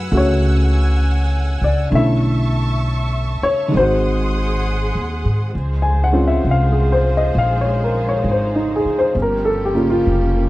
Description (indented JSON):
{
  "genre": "jazz ballad",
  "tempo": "66 BPM",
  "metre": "4/4",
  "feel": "swing 66% on 8ths",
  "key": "Db major from 5.5 s",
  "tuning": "A4 = 440 Hz",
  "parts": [
    { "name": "warm upright piano", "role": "accompaniment", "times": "0.0-10.5 s", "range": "C#3 to Ab5", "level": "-18 LUFS", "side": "left 1 dB", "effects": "none" },
    { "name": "rich symphonic string section", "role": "sustained chords", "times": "0.0-10.5 s", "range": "F3 to E6", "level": "-26 LUFS", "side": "right 1 dB", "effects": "none" },
    { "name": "upright bass", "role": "bass", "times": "0.0-10.5 s", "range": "F1 to G#2", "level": "-18 LUFS", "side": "equal", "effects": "none" }
  ],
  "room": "little or no reverb",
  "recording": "dry, close 1970s-style studio recording",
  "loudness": "-15 LUFS",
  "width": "side -17 dB against mid",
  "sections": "0.0-5.5 A section; 5.5-10.5 B section",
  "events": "none",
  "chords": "0.0 F#m9; 1.9 Bm11; 3.7 G#7; 5.5 Dbmaj7; 9.1 Gm7b5",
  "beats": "0.11 1.01 | 1.92 2.82 3.72 4.62 | 5.53 6.43 7.34 8.24 | 9.14 10.05"
}